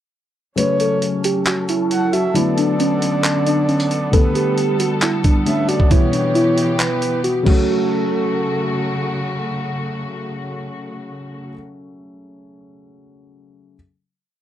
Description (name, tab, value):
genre	hip hop, trap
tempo	135 BPM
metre	4/4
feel	half-time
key	F# phrygian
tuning	A4 = 443 Hz
part	muted felt-like synth keys	melody	0.6-9.0 s	C#4 to B4	-20 LUFS	right 2 dB	chorus, phaser, low-pass filter, digital delay
part	breathy flute-like synth lead	second line	0.6-9.0 s	A4 to F#5	-24 LUFS	right 2 dB	chorus, digital delay
part	dark concert grand piano	accompaniment	0.6-13.8 s	B2 to C#4	-22 LUFS	left 3 dB	low-pass filter
part	dark chamber string section	sustained chords	0.6-11.5 s	C#3 to A4	-25 LUFS	equal	low-pass filter
part	breakbeat sampler-style drum kit	drums	0.6-7.6 s	crash cymbal, handclaps, hi-hat, kick drum	-19 LUFS	equal	none
room	light reverb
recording	dark, warm production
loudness	-16 LUFS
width	side -11 dB against mid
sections	0.6-7.7 breakdown; 7.7-11.2 final hit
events	filter sweep 0.6-7.7; kick muted 6.8-7.7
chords	0.6 F#m; 2.4 Bm7; 4.1 Gadd9; 5.9 Em; 7.5 F#m